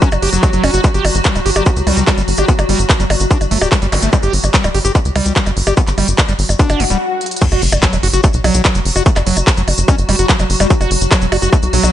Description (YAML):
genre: psychedelic trance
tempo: 146 BPM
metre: 4/4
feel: straight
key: unclear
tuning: A4 = 440 Hz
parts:
  - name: swarming drone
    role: sustained chords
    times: 0.0-11.9 s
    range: F#3 to F#4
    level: -22 LUFS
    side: equal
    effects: built-in reverb, vintage 12-bit sampler grit, sidechain pumping
  - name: screaming distorted acid line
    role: riff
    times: 0.0-11.9 s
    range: F#3 to G4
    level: -19 LUFS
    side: moving between left 4 dB and right 4 dB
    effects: distortion, chorus, auto-pan, sidechain pumping, dub echo
  - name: electronic kick drum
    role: drums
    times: 0.0-11.6 s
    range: none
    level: -13 LUFS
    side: equal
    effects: distortion, overdrive
  - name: techno drum kit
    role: drums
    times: 0.0-11.9 s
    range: crash cymbal, handclaps, hi-hat, percussion blips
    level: -18 LUFS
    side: equal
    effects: none
  - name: cabasa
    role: percussion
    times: 0.0-11.9 s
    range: none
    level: -25 LUFS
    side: left 4 dB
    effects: none
  - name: tight sequencer bass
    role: bass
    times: 0.1-11.9 s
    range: D1 to C#2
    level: -16 LUFS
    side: equal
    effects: none
  - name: zap, swell and impact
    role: sound effects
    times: 3.9-4.0, 6.7-9.1 s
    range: none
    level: -23 LUFS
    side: left 1 dB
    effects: none
room: little or no reverb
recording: nothing above 10.4 kHz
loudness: -11 LUFS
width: side -12 dB against mid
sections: 0.0-7.4 A section; 7.4-11.9 B section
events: swell 6.7-7.4; stop 7.0-7.4; drum fill 7.2; drop 7.4-11.9; impact 7.4-9.1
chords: 0.0 F#5; 0.8 G5; 7.4 F#5